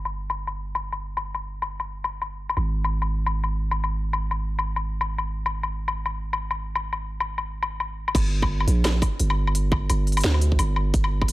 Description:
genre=half-time drum and bass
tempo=172 BPM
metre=4/4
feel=swing 59% on 16ths, half-time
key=unclear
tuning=A4 = 441 Hz
part: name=long sustained 808-style bass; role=bass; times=0.0-11.3 s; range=G1 to D2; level=-25 LUFS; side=right 1 dB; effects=none
part: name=drum and bass drum kit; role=drums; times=0.1-11.3 s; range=crash cymbal, hi-hat, snare drum, woodblock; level=-27 LUFS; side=left 3 dB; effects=low-pass filter on perc, studio reverb, low-pass filter on hats, low-pass filter on snare, low-pass filter on cymbals
part: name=electronic kick drum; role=drums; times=8.1-11.3 s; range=none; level=-23 LUFS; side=right 1 dB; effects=studio reverb
room=little or no reverb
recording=none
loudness=-23 LUFS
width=side -18 dB against mid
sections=0.0-8.2 A section; 8.2-11.3 B section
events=drop 8.2-11.3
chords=none

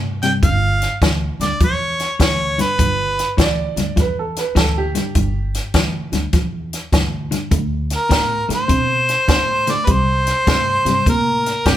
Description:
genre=electric blues shuffle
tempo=102 BPM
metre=4/4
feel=swing 66% on 8ths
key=G mixolydian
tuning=A4 = 441 Hz
part: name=electric guitar at the edge of break-up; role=riff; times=0.0-11.8 s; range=G2 to C4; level=-22 LUFS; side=left 2 dB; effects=tremolo
part: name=upright bass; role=bass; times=0.0-11.8 s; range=G1 to B2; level=-24 LUFS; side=equal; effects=none
part: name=clear harmonica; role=melody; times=0.2-3.4, 8.0-11.8 s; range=G4 to G5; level=-18 LUFS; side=equal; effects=overdrive
part: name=compact cocktail drum kit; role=drums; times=0.2-11.8 s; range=hi-hat, kick drum, snare drum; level=-18 LUFS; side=equal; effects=none
part: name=clear upright piano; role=second line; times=3.4-5.9 s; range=G4 to D5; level=-24 LUFS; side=right 5 dB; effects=none
room=light reverb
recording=band playing live in one room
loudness=-15 LUFS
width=side -12 dB against mid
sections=0.0-11.8 A section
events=none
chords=0.4 G7(no3); 7.5 D5; 9.9 C5

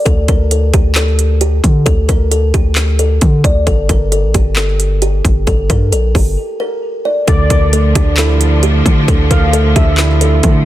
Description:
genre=hip hop, trap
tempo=133 BPM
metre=4/4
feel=half-time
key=D minor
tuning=A4 = 440 Hz
part: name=kalimba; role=melody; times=0.0-10.6 s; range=G4 to D5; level=-18 LUFS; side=equal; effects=digital delay
part: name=long sustained 808-style bass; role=bass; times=0.1-10.7 s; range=G1 to D3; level=-13 LUFS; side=equal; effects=none
part: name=trap drum kit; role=drums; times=0.1-10.5 s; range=handclaps, hi-hat, kick drum, snare drum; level=-14 LUFS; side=equal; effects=none
part: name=warm velvety synth lead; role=second line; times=7.3-10.4 s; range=D5 to F5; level=-21 LUFS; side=left 1 dB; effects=chorus, digital delay
part: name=tine electric piano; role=accompaniment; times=7.3-10.7 s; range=D3 to E4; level=-16 LUFS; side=right 5 dB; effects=none
part: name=clear symphonic string section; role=sustained chords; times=7.3-10.7 s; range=D3 to D4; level=-21 LUFS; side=left 1 dB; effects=none
room=little or no reverb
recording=dense, heavily limited modern master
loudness=-10 LUFS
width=side -14 dB against mid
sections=0.0-7.3 A section; 7.3-10.7 B section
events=break 6.4-7.3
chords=0.1 D5; 3.7 Gm; 7.3 Dmadd9

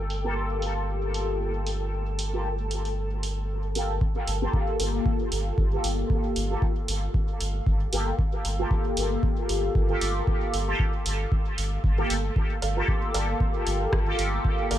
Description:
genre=dub techno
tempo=115 BPM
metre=4/4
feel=swing 55% on 16ths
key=G minor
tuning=A4 = 442 Hz
part: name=granular cloud pad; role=sustained chords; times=0.0-14.8 s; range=A4 to A5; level=-38 LUFS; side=right 1 dB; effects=built-in reverb, sidechain pumping
part: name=soft dub sub bass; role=bass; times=0.0-14.8 s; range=G1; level=-29 LUFS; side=equal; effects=sidechain pumping
part: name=punchy analog drum machine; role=drums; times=0.1-14.8 s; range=hi-hat, rim click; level=-34 LUFS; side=right 2 dB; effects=none
part: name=resonant sweep polysynth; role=stabs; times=0.2-14.8 s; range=Bb3 to A4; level=-30 LUFS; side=left 1 dB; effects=chorus, phaser, cassette tape, dub echo
part: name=electronic kick drum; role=drums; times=4.0-14.6 s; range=none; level=-26 LUFS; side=equal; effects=none
part: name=warbly dusty pluck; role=riff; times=12.6-14.8 s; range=A4 to F5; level=-36 LUFS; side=right 1 dB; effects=lush chorus, sidechain pumping, dub echo
room=little or no reverb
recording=low-pass filter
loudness=-24 LUFS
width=side -12 dB against mid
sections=0.0-4.0 A section; 4.0-14.8 B section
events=filter sweep on analog polysynth 0.0-4.0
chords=0.0 Gm9

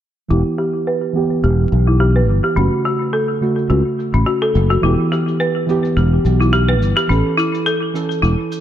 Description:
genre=organic downtempo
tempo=106 BPM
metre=4/4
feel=swing 55% on 16ths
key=E dorian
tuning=A4 = 439 Hz
part: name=muted felt-like synth keys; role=accompaniment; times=0.3-8.6 s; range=C#3 to A4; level=-19 LUFS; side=right 2 dB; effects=chorus, low-pass filter, ping-pong delay
part: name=folk marimba with hard mallets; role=arpeggios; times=0.3-8.4 s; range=C#4 to B4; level=-19 LUFS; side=left 1 dB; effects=low-pass filter, ping-pong delay
part: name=sustaining fretless electric bass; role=bass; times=0.3-8.3 s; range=E1 to C#2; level=-14 LUFS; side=equal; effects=wide subtle chorus
part: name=shaker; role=drums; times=0.3-8.6 s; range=none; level=-45 LUFS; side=left 4 dB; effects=low-pass filter on perc, low-pass filter on room
room=light reverb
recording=dark, warm production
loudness=-14 LUFS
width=side -10 dB against mid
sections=0.3-8.6 A section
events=filter sweep on drum 0.3-8.6; filter sweep on marimba 0.3-8.6; filter sweep on synth keys 0.3-8.6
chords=0.3 Em; 2.6 F#m; 4.8 Em; 7.1 A

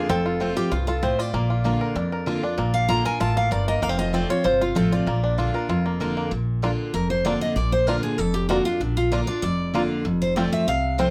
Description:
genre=bluegrass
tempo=193 BPM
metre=4/4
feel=straight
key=Bb major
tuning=A4 = 441 Hz
part: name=bluegrass banjo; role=melody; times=0.0-11.1 s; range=Bb3 to Bb4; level=-30 LUFS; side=equal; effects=plate reverb
part: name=picked steel-string acoustic guitar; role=melody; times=0.0-11.1 s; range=D4 to Bb5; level=-27 LUFS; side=equal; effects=none
part: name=picked steel-string acoustic guitar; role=accompaniment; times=0.0-11.1 s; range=F2 to F4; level=-28 LUFS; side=equal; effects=none
part: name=upright bass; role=bass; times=0.1-11.1 s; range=F1 to F2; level=-29 LUFS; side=equal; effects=none
room=moderate studio ambience, RT60 0.4 s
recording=none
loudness=-23 LUFS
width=mono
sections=0.0-6.3 A section; 6.3-11.1 B section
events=steel-string acoustic guitar solo 6.3-11.1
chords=0.1 F; 1.3 Bb; 3.8 F; 5.1 Bb; 10.1 F

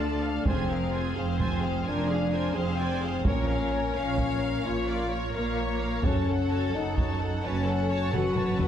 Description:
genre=cinematic, epic orchestral film score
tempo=86 BPM (dotted quarters)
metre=12/8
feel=straight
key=unclear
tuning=A4 = 440 Hz
part: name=rich symphonic violin section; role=melody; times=0.0-8.7 s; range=Db5 to A5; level=-38 LUFS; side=left 3 dB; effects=none
part: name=clear symphonic violin section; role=second line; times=0.0-8.7 s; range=Ab4 to F5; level=-37 LUFS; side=left 2 dB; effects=none
part: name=rich symphonic viola section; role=accompaniment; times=0.0-8.7 s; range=F4 to F5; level=-36 LUFS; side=right 2 dB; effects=none
part: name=warm French horn section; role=sustained chords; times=0.0-8.7 s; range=Bb3 to F#4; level=-30 LUFS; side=left 5 dB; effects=none
part: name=rich studio cello section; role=bass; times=0.0-8.7 s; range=D2 to Bb2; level=-32 LUFS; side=right 2 dB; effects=none
part: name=rich symphonic double bass section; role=bass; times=0.0-8.7 s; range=F1 to D2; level=-33 LUFS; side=right 4 dB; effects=none
part: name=taiko ensemble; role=drums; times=0.5-8.7 s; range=none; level=-30 LUFS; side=right 1 dB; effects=none
room=moderate scoring stage reverb, RT60 2.1 s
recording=none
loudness=-25 LUFS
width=side -9 dB against mid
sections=0.0-8.7 A section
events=drum fill 8.1-8.7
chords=0.5 Fm; 3.3 Bbm; 6.0 F#m

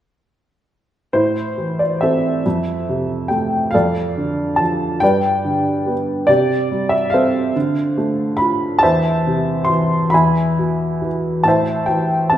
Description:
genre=classical, lyrical solo piano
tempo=47 BPM (dotted quarters)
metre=6/8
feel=rubato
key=A minor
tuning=A4 = 437 Hz
part: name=warm upright piano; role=solo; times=1.1-12.4 s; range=E2 to C6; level=-15 LUFS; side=equal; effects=none
room=wet recital hall reverb, RT60 1.5 s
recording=none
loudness=-15 LUFS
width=side -11 dB against mid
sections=1.1-12.4 A section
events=none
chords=1.1 Am; 2.5 Fmaj7; 3.7 Dm/F; 5.0 G; 6.3 Csus2; 7.6 Dm7; 8.8 Am/E; 10.1 E; 11.5 Am

